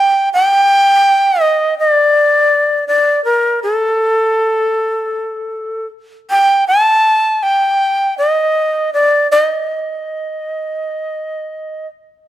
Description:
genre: japanese traditional, Japanese chamber music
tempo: 80 BPM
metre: 4/4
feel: rubato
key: unclear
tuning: A4 = 441 Hz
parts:
  - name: breathy bright shakuhachi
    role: solo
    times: 0.0-11.9 s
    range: A4 to A5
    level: -12 LUFS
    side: equal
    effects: none
room: light reverb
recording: close, detailed microphones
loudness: -11 LUFS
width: side -13 dB against mid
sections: 0.0-12.3 A section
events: none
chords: none

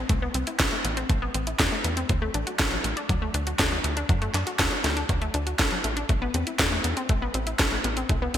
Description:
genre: italo disco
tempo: 120 BPM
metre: 4/4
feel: straight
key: A dorian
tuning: A4 = 440 Hz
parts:
  - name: wide unison pluck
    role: arpeggios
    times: 0.0-8.4 s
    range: F#3 to A4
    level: -30 LUFS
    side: left 3 dB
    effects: digital delay
  - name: tight sequencer bass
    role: bass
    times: 0.0-8.4 s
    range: A1 to F#2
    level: -30 LUFS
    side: equal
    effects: none
  - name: electronic kick drum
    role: drums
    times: 0.1-8.2 s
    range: none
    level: -26 LUFS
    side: equal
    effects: overdrive
  - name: house drum kit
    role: drums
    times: 0.1-8.4 s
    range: handclaps, hi-hat, snare drum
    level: -27 LUFS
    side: equal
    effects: gated reverb
room: moderate lush hall reverb, RT60 2.1 s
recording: bright 1980s-style digital production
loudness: -23 LUFS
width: side -10 dB against mid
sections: 0.0-8.4 A section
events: none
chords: 0.0 Amadd9; 2.1 D; 6.1 Amadd9

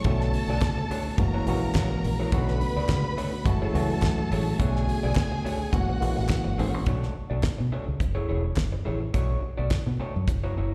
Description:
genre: disco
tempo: 106 BPM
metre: 4/4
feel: straight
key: unclear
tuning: A4 = 440 Hz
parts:
  - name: warm studio string section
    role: second line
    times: 0.0-6.8 s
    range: F#4 to B5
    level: -36 LUFS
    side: equal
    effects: slapback echo
  - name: tine electric piano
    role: accompaniment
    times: 0.0-6.9 s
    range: C#3 to F#4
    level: -32 LUFS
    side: equal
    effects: overdrive
  - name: damped 70s drum kit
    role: drums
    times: 0.0-10.4 s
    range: hi-hat, kick drum, snare drum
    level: -29 LUFS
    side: equal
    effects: none
  - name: electric guitar through a small old amp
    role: accompaniment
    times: 0.1-10.7 s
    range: A3 to D5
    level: -37 LUFS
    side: equal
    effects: slapback echo
  - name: fingered electric bass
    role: bass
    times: 0.1-10.7 s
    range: E1 to B2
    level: -30 LUFS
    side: equal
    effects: none
  - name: group handclap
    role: percussion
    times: 0.6-9.8 s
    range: none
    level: -46 LUFS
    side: equal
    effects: none
room: little or no reverb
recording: live gig heard through the venue's PA, recital hall reverb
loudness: -26 LUFS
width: mono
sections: 0.0-6.9 A section; 6.9-10.7 B section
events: none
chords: 0.1 Bm9; 1.2 F#7; 2.3 Bm9; 3.5 F#m9; 4.6 Bm9; 5.7 F#7; 6.9 Bm9; 8.0 F#m9; 9.1 Bm9

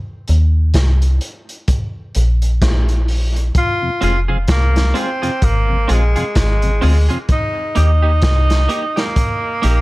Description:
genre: dub reggae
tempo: 64 BPM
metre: 4/4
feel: swing 59% on 16ths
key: unclear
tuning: A4 = 441 Hz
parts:
  - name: metallic FM bass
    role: bass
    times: 0.3-9.8 s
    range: F1 to Eb2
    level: -13 LUFS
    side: equal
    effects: none
  - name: crunchy breakbeat drum kit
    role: drums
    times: 0.3-9.8 s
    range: hi-hat, kick drum, snare drum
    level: -19 LUFS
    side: equal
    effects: none
  - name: clear tenor saxophone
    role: melody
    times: 3.6-9.8 s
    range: Ab3 to F4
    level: -20 LUFS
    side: equal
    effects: dub echo
  - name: mellow tonewheel organ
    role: accompaniment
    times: 3.8-7.2 s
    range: F2 to F4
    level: -26 LUFS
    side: left 2 dB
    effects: slow rotary speaker, dub echo
  - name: semi-hollow electric guitar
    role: accompaniment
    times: 4.0-9.8 s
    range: Bb3 to Ab4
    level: -25 LUFS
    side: right 3 dB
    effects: wide subtle chorus, dub echo
room: light reverb, small room ambience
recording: none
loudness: -13 LUFS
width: side -20 dB against mid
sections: 0.0-9.8 A section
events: break 0.0-3.5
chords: 0.0 Eb5; 3.5 Fm; 7.3 Eb

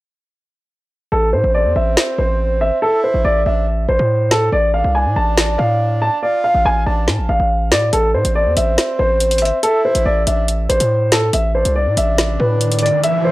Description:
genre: hip hop, drill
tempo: 141 BPM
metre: 4/4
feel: half-time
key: A harmonic minor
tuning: A4 = 440 Hz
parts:
  - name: dark grand piano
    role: melody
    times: 1.1-13.3 s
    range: A4 to A5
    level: -16 LUFS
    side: equal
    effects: low-pass filter
  - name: distorted 808-style bass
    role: bass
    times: 1.1-12.9 s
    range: G#1 to A2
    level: -18 LUFS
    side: equal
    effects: distortion
  - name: breathy flute-like synth lead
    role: second line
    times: 1.3-13.3 s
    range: C5 to F5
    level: -24 LUFS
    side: right 2 dB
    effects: chorus, analog delay
  - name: drill drum kit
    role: drums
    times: 2.0-13.1 s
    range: hi-hat, snare drum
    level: -18 LUFS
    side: equal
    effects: none
  - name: riser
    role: sound effects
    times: 12.1-13.3 s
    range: none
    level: -23 LUFS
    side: right 3 dB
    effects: none
room: digital ambience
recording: dry, gritty hardware recording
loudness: -13 LUFS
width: side -18 dB against mid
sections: 1.1-13.3 A section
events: hi-hats muted 1.1-7.9; riser 12.1-13.3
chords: 1.1 Am; 4.5 Dm/A; 7.9 Am; 11.3 E5/A

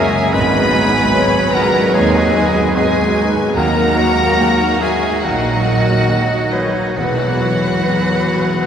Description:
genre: cinematic, emotional film score for orchestra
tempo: 65-75 BPM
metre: 4/4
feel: rubato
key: unclear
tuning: A4 = 440 Hz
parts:
  - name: rich studio violin section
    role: melody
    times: 0.0-8.7 s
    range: D#5 to B5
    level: -22 LUFS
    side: left 4 dB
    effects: none
  - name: bright oboe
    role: second line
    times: 0.0-8.7 s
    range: D#4 to B4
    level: -22 LUFS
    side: right 2 dB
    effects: none
  - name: mellow clarinet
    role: second line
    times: 0.0-8.7 s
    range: F#4 to E5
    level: -23 LUFS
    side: right 1 dB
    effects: none
  - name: rich studio violin section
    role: second line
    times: 0.0-8.7 s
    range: G#3 to B4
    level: -24 LUFS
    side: equal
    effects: none
  - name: silver concert flute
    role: second line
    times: 0.0-8.7 s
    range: B4 to G#5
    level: -23 LUFS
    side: left 1 dB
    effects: none
  - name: clear studio viola section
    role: accompaniment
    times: 0.0-8.7 s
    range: E3 to C#4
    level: -24 LUFS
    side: right 2 dB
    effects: none
  - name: felt-muted upright piano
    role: accompaniment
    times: 0.0-8.7 s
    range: E1 to C#5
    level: -21 LUFS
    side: right 1 dB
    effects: none
  - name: mellow French horn section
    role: sustained chords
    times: 0.0-8.7 s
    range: A#2 to B3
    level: -21 LUFS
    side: left 1 dB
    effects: none
  - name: concert harp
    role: arpeggios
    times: 0.0-8.7 s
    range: F#2 to G#5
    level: -25 LUFS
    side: left 3 dB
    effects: none
  - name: dark studio cello section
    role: bass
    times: 0.3-7.7 s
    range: D#2 to A#2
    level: -24 LUFS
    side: right 2 dB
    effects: none
  - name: rich studio double bass section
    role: bass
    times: 0.3-7.7 s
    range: E1 to D#2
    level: -23 LUFS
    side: right 2 dB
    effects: none
room: wet cathedral reverb, RT60 7.1 s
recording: recorded in a church or concert hall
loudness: -12 LUFS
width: side -8 dB against mid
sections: 0.0-8.7 A section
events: none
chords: 0.3 G#m7; 3.6 D#m; 7.0 Esus2

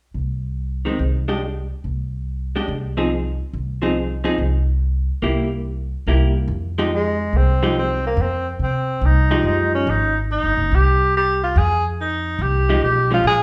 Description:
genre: jazz, small-group swing and bop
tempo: 142 BPM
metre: 4/4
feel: swing 67% on 8ths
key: F minor from 6.5 s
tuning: A4 = 439 Hz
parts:
  - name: upright bass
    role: bass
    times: 0.1-13.4 s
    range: Gb1 to C3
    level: -23 LUFS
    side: equal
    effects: none
  - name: vintage hollow-body jazz guitar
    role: accompaniment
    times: 0.9-9.8, 12.7-13.2 s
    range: Eb3 to Ab4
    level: -24 LUFS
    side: equal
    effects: none
  - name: warm tenor saxophone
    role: melody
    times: 6.9-13.4 s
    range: Ab3 to Ab4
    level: -22 LUFS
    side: equal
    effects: none
room: wet large studio reverb, RT60 0.9 s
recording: band playing live in one room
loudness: -20 LUFS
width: mono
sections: 0.0-6.5 A section; 6.5-13.4 B section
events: none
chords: 0.0 N.C.; 3.1 Fm7; 4.8 C7; 6.5 Fm9

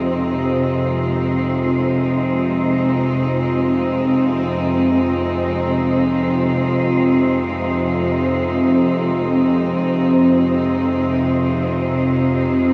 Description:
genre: dark ambient drone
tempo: free time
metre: none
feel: none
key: unclear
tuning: A4 = 440 Hz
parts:
  - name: warm studio cello section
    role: sustained chords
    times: 0.0-12.7 s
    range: Ab3 to F4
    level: -21 LUFS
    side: equal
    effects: none
  - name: bowed-like drone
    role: drone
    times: 0.0-12.7 s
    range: F2 to C3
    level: -21 LUFS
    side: equal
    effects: built-in reverb
  - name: wind-like tuned noise texture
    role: texture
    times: 0.0-12.7 s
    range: C5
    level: -30 LUFS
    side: equal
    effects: built-in reverb
  - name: dark detuned synth bell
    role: arpeggios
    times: 3.2-12.7 s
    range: none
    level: barely audible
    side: none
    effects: none
room: moderate plate reverb, RT60 2.5 s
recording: echo-heavy mix, small room ambience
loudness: -18 LUFS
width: mono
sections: 0.0-12.7 A section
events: none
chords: 0.0 Fm

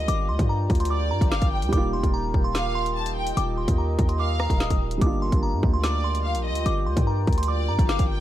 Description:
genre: hip hop, drill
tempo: 146 BPM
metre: 4/4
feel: half-time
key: G minor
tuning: A4 = 442 Hz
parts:
  - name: delicate synth tine bell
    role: melody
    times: 0.0-8.2 s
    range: Bb5 to Eb6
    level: -30 LUFS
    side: equal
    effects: chorus, phaser, low-pass filter, digital delay
  - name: rich studio violin section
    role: second line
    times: 0.0-8.2 s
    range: D5 to A5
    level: -33 LUFS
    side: left 1 dB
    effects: digital delay
  - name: dark concert grand piano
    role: accompaniment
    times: 0.0-8.2 s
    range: G3 to F4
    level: -32 LUFS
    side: right 3 dB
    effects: low-pass filter
  - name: deep dark ambient pad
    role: sustained chords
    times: 0.0-8.2 s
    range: F4 to G5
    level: -33 LUFS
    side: equal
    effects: chorus, built-in reverb
  - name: hard-hitting 808-style bass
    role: bass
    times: 0.0-8.2 s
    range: Eb1 to G2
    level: -25 LUFS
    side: equal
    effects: none
  - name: drill drum kit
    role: drums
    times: 0.1-8.1 s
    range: hi-hat, kick drum, rim click, snare drum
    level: -24 LUFS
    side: equal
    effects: none
room: little or no reverb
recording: vinyl crackle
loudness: -21 LUFS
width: side -13 dB against mid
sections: 0.0-8.2 A section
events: none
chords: 0.0 Gm7; 1.7 Ebadd9; 5.0 Gm7

